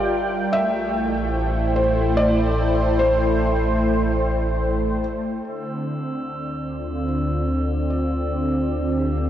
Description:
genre	ambient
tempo	73 BPM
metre	3/4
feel	straight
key	D minor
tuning	A4 = 444 Hz
part	felt-muted upright piano	melody	0.0-9.3 s	A4 to E5	-25 LUFS	left 1 dB	diffuse ambient delay
part	warm analog pad	sustained chords	0.0-9.3 s	D3 to G5	-22 LUFS	equal	chorus
part	round analog bass	bass	0.0-9.3 s	G1 to D2	-25 LUFS	equal	none
part	glass harmonica	texture	5.4-9.3 s	E6	-35 LUFS	right 1 dB	none
part	soft synth bell	arpeggios	9.0-9.3 s	G4	-37 LUFS	left 1 dB	chorus
room	wet huge ambient reverb, RT60 9.7 s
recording	worn, warbling old tape, cassette tape, warbly pitch drift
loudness	-19 LUFS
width	side -11 dB against mid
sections	0.0-5.5 A section; 5.5-9.3 B section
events	none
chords	0.0 Gm7; 0.5 Am7; 5.5 Dm9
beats	| 0.53 1.35 2.17 | 2.99 3.81 4.64 | 5.46 6.28 7.10 | 7.92 8.74

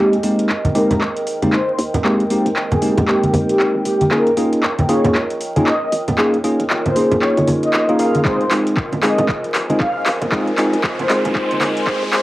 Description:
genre	deep house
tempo	116 BPM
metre	4/4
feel	swing 60% on 16ths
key	F minor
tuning	A4 = 440 Hz
part	breathy flute-like synth lead	melody	0.0-12.2 s	G4 to F5	-21 LUFS	equal	ensemble chorus, cassette tape, tape echo
part	dark analog pad	sustained chords	1.1-12.2 s	Eb4 to C6	-31 LUFS	equal	none
part	bright tine electric piano	stabs	0.0-12.2 s	Ab3 to Ab4	-18 LUFS	equal	analog chorus, sidechain pumping, cassette tape, tape echo
part	hollow knocking FM bass	bass	0.0-12.2 s	Eb1 to Ab2	-26 LUFS	equal	none
part	airy breathy pad	texture	0.0-12.2 s	Bb4 to Ab5	-26 LUFS	right 1 dB	chorus, sidechain pumping, cassette tape
part	deep house drum kit	drums	0.1-12.2 s	handclaps, hi-hat	-22 LUFS	equal	overdrive, cassette tape
part	congas	percussion	0.6-11.7 s	none	-21 LUFS	right 1 dB	sidechain pumping on perc
part	riser	sound effects	9.5-12.2 s	none	-29 LUFS	equal	none
part	electronic kick drum	drums	8.3-12.0 s	none	-24 LUFS	equal	overdrive, cassette tape
room	moderate booth ambience, RT60 0.2 s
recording	home recording on cassette, vinyl crackle, high-pass filter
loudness	-14 LUFS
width	side -17 dB against mid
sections	0.0-12.2 A section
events	build-up 0.0-12.2; drum fill 0.0-12.2; filter sweep on soft synth lead 0.0-12.2; filter sweep 0.0-12.2; riser 9.5-12.2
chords	0.0 Abmaj9; 4.1 Db69; 8.3 Fm7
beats	0.49 1.01 1.53 | 2.04 2.56 3.08 3.60 | 4.11 4.63 5.15 5.67 | 6.18 6.70 7.22 7.73 | 8.25 8.77 9.29 9.80 | 10.32 10.84 11.35 11.87

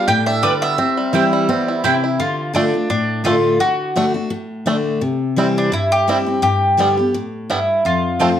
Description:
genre	bluegrass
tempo	170 BPM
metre	4/4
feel	swing 54% on 8ths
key	C major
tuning	A4 = 443 Hz
part	mandolin	melody	0.0-8.4 s	D4 to G5	-18 LUFS	equal	none
part	picked steel-string acoustic guitar	accompaniment	0.0-8.4 s	F2 to G4	-18 LUFS	left 2 dB	none
part	bluegrass banjo	arpeggios	0.0-8.3 s	G3 to G4	-22 LUFS	right 4 dB	none
part	mandolin	stabs	0.4-1.9, 8.2-8.3 s	B3 to A5	-21 LUFS	right 6 dB	none
room	moderate large studio reverb, RT60 0.8 s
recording	none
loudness	-15 LUFS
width	side -10 dB against mid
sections	0.0-2.2 A section; 2.2-8.4 A section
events	none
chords	0.0 G7; 0.8 C; 2.2 Dm; 3.6 D; 5.0 C; 6.4 G; 7.8 F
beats	0.08 0.43 | 0.78 1.14 1.49 1.84 | 2.20 2.55 2.90 3.26 | 3.61 3.96 4.32 4.67 | 5.02 5.38 5.73 6.08 | 6.43 6.79 7.14 7.50 | 7.85 8.20

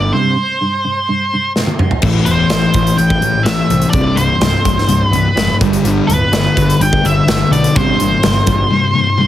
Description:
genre	quiet-loud alternative rock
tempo	126 BPM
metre	4/4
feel	straight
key	C major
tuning	A4 = 443 Hz
part	octave-fuzz lead guitar	melody	0.0-9.3 s	B4 to G5	-17 LUFS	right 2 dB	distortion
part	clean electric guitar	arpeggios	0.0-9.3 s	C2 to A3	-20 LUFS	right 3 dB	ensemble chorus
part	fuzz picked electric bass	bass	0.0-8.6 s	C1 to C2	-18 LUFS	equal	overdrive
part	big rock drum kit	drums	1.6-8.6 s	crash cymbal, hi-hat, kick drum, snare drum, toms	-18 LUFS	equal	none
part	thick fuzz guitar	riff	2.0-9.3 s	C2 to A3	-15 LUFS	left 4 dB	distortion
room	light reverb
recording	heavily compressed radio sound, multiband compression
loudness	-11 LUFS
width	side -12 dB against mid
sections	0.0-2.0 A section; 2.0-9.3 B section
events	drum fill 1.6-2.0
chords	0.1 C5; 2.0 Am7; 3.9 C5; 5.6 G; 7.8 C5/G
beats	| 0.12 0.59 1.07 1.55 | 2.03 2.51 2.99 3.46 | 3.94 4.42 4.90 5.38 | 5.85 6.33 6.81 7.29 | 7.76 8.24 8.71 9.19

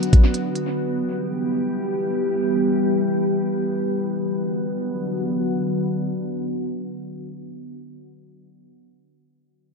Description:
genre	hip hop, drill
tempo	free time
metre	none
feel	none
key	B minor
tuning	A4 = 440 Hz
part	glassy FM pad	sustained chords	0.0-7.3 s	D3 to G4	-22 LUFS	equal	ensemble chorus, built-in reverb
part	drill drum kit	drums	0.0-0.7 s	hi-hat, kick drum	-15 LUFS	equal	analog delay
room	light reverb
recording	echo-heavy mix, low-pass filter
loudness	-21 LUFS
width	side -4 dB against mid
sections	0.0-4.1 A section; 4.1-7.5 B section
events	filter sweep 0.0-4.1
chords	0.0 Bm; 0.7 Em; 4.1 Bm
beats	free time

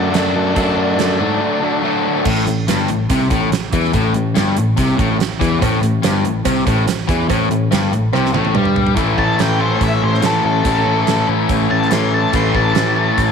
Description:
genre	classic rock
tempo	143 BPM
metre	4/4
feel	straight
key	A major from 9.0 s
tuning	A4 = 440 Hz
part	octave-fuzz lead guitar	melody	0.0-1.8, 9.2-13.3 s	D4 to C6	-20 LUFS	left 1 dB	distortion
part	crunchy overdriven guitar	riff	0.0-13.3 s	G2 to F#4	-21 LUFS	right 10 dB	none
part	distorted electric guitar	riff	0.0-13.3 s	G2 to A4	-18 LUFS	left 11 dB	distortion
part	barky tine electric piano	bass	0.0-13.3 s	G1 to G#2	-20 LUFS	equal	none
part	gated 80s drum kit	drums	0.1-13.3 s	crash cymbal, hi-hat, kick drum, snare drum, toms	-21 LUFS	right 4 dB	none
part	cowbell	percussion	5.6-8.6 s	none	-27 LUFS	right 12 dB	none
room	light reverb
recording	1960s-style stereo with parts hard left and right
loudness	-14 LUFS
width	side -6 dB against mid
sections	0.0-2.3 A section; 2.3-9.0 B section; 9.0-13.3 C section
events	drum fill 8.1-9.0; lead electric guitar solo 9.0-13.3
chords	0.0 D/F#; 2.3 A5; 9.0 A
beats	0.14 | 0.57 0.99 1.41 1.83 | 2.25 2.68 3.10 3.52 | 3.94 4.36 4.78 5.20 | 5.62 6.04 6.46 6.88 | 7.29 7.71 8.13 8.55 | 8.97 9.39 9.81 10.23 | 10.65 11.07 11.49 11.91 | 12.34 12.76 13.18

